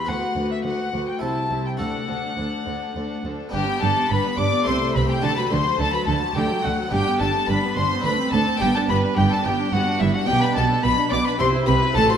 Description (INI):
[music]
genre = classical, baroque-style concerto movement with solo episodes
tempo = 106 BPM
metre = 3/4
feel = straight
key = G major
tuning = A4 = 439 Hz
[part]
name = dark violin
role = melody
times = 0.0-12.2 s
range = E5 to D6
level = -26 LUFS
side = left 2 dB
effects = none
[part]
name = rich studio violin section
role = melody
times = 0.0-12.2 s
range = A4 to D6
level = -28 LUFS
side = left 5 dB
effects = none
[part]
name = rich chamber violin section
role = second line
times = 0.0-12.2 s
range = E4 to A5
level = -28 LUFS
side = left 2 dB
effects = none
[part]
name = dark chamber viola section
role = accompaniment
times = 0.0-12.2 s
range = F#3 to A4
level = -27 LUFS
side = right 1 dB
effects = none
[part]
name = harpsichord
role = accompaniment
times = 0.0-12.2 s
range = C2 to C5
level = -28 LUFS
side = equal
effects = none
[part]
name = dark chamber cello section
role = bass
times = 0.1-12.0 s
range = C2 to D3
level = -27 LUFS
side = right 3 dB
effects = none
[part]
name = warm chamber double bass section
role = bass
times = 3.5-12.0 s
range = G1 to D2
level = -26 LUFS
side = right 4 dB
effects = none
[sound]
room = wet concert hall reverb, RT60 1.7 s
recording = none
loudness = -19 LUFS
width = side -8 dB against mid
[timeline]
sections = 0.0-3.5 A section; 3.5-12.2 B section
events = none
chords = 0.1 Bm/D; 1.2 C; 1.8 D; 3.5 G; 4.7 Am/C; 5.2 D; 6.9 G; 8.1 D7; 8.6 G; 10.3 G/B; 11.4 C